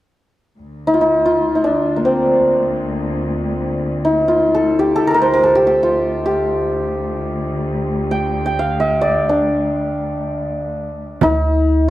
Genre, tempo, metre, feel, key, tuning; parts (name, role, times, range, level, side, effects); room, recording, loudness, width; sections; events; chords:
Persian modal ensemble; free time; D dastgah shur; A4 = 440 Hz
muted chamber cello section; drone; 0.6-11.3 s; D2; -24 LUFS; left 1 dB
santur; melody; 0.9-11.9 s; Bb3 to G5; -15 LUFS; equal
upright bass; bass; 11.2-11.9 s; D2; -16 LUFS; right 1 dB
frame drum; percussion; 11.2-11.4 s; -18 LUFS; right 5 dB
moderate studio reverb, RT60 0.6 s; dark, warm production; -15 LUFS; side -15 dB against mid
0.6-11.2 A section